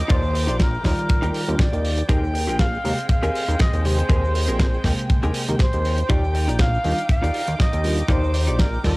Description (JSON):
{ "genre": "nu-disco, nu disco", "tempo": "120 BPM", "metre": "4/4", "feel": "swing 55% on 16ths", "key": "Eb major", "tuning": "A4 = 440 Hz", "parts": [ { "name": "jazz flute", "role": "melody", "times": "0.0-9.0 s", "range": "Bb4 to G5", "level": "-27 LUFS", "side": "equal", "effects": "tape echo" }, { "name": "warm chamber violin section", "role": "sustained chords", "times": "0.0-9.0 s", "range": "Ab3 to D6", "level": "-34 LUFS", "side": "equal", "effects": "sidechain pumping" }, { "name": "chorused synth bass", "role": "bass", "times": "0.0-8.9 s", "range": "Bb1 to Eb2", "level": "-22 LUFS", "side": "equal", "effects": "none" }, { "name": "downlifter", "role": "sound effects", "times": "0.0-2.1 s", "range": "none", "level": "-42 LUFS", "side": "left 1 dB", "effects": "none" }, { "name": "direct-recorded clean electric guitar", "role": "riff", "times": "0.1-8.9 s", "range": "C4 to D5", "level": "-30 LUFS", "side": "left 1 dB", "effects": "lush chorus" }, { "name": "damped 70s drum kit", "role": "drums", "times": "0.1-9.0 s", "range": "hi-hat, shaker, snare drum", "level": "-29 LUFS", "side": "right 1 dB", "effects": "studio reverb, cassette tape" }, { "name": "kick drum", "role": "drums", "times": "0.1-9.0 s", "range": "none", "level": "-20 LUFS", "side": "equal", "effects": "studio reverb, cassette tape" }, { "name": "bell-like tine electric piano", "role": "accompaniment", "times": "0.8-9.0 s", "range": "C3 to G5", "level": "-28 LUFS", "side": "equal", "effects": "sidechain pumping" } ], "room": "light reverb", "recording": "home recording on cassette", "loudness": "-18 LUFS", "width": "side -23 dB against mid", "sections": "0.0-9.0 A section", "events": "none", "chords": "0.0 Ebmaj9; 2.1 Abmaj9; 6.1 Ebmaj9" }